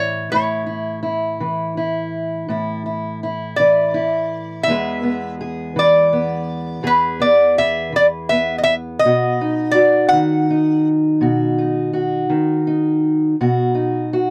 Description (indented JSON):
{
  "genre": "acoustic country blues, solo or duo",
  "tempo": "55 BPM (dotted quarters)",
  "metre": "12/8",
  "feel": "straight",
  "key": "E major",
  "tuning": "A4 = 438 Hz",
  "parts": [
    { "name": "lap resonator guitar", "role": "melody", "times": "0.0-10.9 s", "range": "B4 to F#5", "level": "-18 LUFS", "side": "equal", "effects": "none" },
    { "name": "fingerpicked steel-string acoustic guitar", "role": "accompaniment", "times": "0.0-14.3 s", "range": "E2 to G#4", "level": "-21 LUFS", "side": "equal", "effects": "none" }
  ],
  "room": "light reverb",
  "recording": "dry, close 1970s-style studio recording",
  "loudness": "-18 LUFS",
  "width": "mono",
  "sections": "0.0-14.3 A section",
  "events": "none",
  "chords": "0.0 A; 4.7 E; 9.0 B"
}